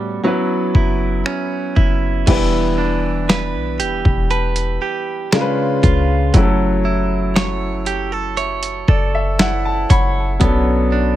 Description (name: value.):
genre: contemporary R&B.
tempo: 59 BPM.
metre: 4/4.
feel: straight.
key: unclear.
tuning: A4 = 440 Hz.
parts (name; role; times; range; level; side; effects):
warm grand piano; accompaniment; 0.0-11.2 s; F#3 to B5; -20 LUFS; left 2 dB; none.
direct-recorded clean electric guitar; arpeggios; 0.0-11.2 s; A2 to C#5; -22 LUFS; right 6 dB; ping-pong delay.
warm 808-style bass; bass; 0.0-11.2 s; E1 to A2; -20 LUFS; equal; none.
dusty soul sampler-style drum kit; drums; 0.7-10.6 s; crash cymbal, finger snaps, hi-hat, kick drum, snare drum; -16 LUFS; equal; none.
worn celesta; texture; 2.3-11.2 s; E5 to B5; -32 LUFS; left 3 dB; stereo widening, ping-pong delay.
room: little or no reverb.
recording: none.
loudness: -15 LUFS.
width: side -13 dB against mid.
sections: 0.0-2.3 A section; 2.3-11.2 B section.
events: grand piano fill 8.4-10.4.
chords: 0.2 F#7sus4; 2.3 Em7; 5.3 C#7b9; 6.3 F#m7; 10.4 Bm9.